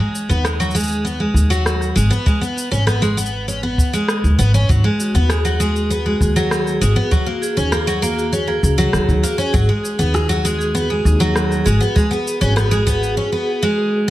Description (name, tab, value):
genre	folktronica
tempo	99 BPM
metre	4/4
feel	straight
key	G# minor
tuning	A4 = 441 Hz
part	picked twelve-string acoustic guitar	arpeggios	0.0-14.1 s	F#3 to C#4	-19 LUFS	equal	low-pass filter, ping-pong delay
part	electronic cabasa and rim click	drums	0.2-13.2 s	none	-25 LUFS	equal	overdrive
part	upright bass	bass	0.3-13.2 s	G#1 to D#2	-18 LUFS	equal	none
part	kick drum	drums	1.3-13.0 s	none	-17 LUFS	equal	none
part	vibraphone with medium hard mallets	second line	5.0-14.1 s	F#4 to G#4	-22 LUFS	equal	ping-pong delay
room	light reverb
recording	vinyl crackle, lossy compression artefacts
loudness	-15 LUFS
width	side -15 dB against mid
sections	0.0-14.1 A section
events	none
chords	0.0 G#m7; 2.3 G#madd11; 4.7 G#m7; 7.1 D#m7; 9.5 G#m7; 12.0 G#madd11